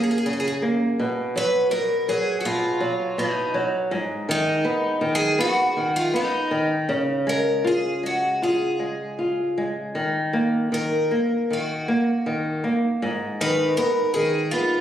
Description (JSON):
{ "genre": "fado-style ballad", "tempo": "80 BPM", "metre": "4/4", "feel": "rubato", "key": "unclear", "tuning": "A4 = 440 Hz", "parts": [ { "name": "picked twelve-string acoustic guitar", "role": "melody", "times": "0.0-14.8 s", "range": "D#4 to B4", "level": "-24 LUFS", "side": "equal", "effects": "none" }, { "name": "flamenco guitar", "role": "accompaniment", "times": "0.0-14.8 s", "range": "F#2 to E#4", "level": "-23 LUFS", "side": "equal", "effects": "none" } ], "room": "wet recital hall reverb, RT60 1.7 s", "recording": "recorded on a phone in the room, studio reverb", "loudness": "-20 LUFS", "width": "side -10 dB against mid", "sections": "0.0-14.8 A section", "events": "none", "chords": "0.0 F#; 1.0 B5; 3.9 G#m; 6.9 C#; 10.0 D#m; 13.0 G#m", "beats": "0.25 | 0.99 1.73 2.46 3.19 | 3.93 4.66 5.40 6.14 | 6.90 7.66 8.43 9.21 | 9.97 10.74 11.52 12.28 | 13.03 13.78 14.53" }